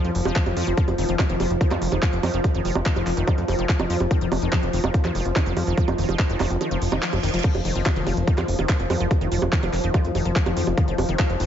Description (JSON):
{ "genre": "psychedelic trance", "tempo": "144 BPM", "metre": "4/4", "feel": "straight", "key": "unclear", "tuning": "A4 = 440 Hz", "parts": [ { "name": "pulsing gated texture", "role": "sustained chords", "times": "0.0-11.5 s", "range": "F3", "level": "-28 LUFS", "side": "left 1 dB", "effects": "chorus, built-in reverb, sidechain pumping" }, { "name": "wide unison pluck", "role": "riff", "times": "0.0-11.5 s", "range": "Eb3 to F3", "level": "-30 LUFS", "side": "moving between left 7 dB and right 7 dB", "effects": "auto-pan, sidechain pumping, tape echo" }, { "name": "plucky analog bass", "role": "bass", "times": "0.0-11.5 s", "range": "F1 to F2", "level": "-25 LUFS", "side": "equal", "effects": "none" }, { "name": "garage drum kit", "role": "drums", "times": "0.0-11.5 s", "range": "bongos, crash cymbal, handclaps, hi-hat", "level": "-28 LUFS", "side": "right 3 dB", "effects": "none" }, { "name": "electronic kick drum", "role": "drums", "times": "0.4-11.3 s", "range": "none", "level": "-23 LUFS", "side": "equal", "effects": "none" }, { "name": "reverse cymbal", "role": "sound effects", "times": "6.8-7.4 s", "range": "none", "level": "-35 LUFS", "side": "right 6 dB", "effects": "none" } ], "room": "little or no reverb", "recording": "nothing above 7.6 kHz", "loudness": "-20 LUFS", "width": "side -9 dB against mid", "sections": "0.0-11.5 A section", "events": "kick drops out 6.6-7.4; reverse cymbal 6.8-7.4; drum fill 7.2", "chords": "0.0 F7(no3)" }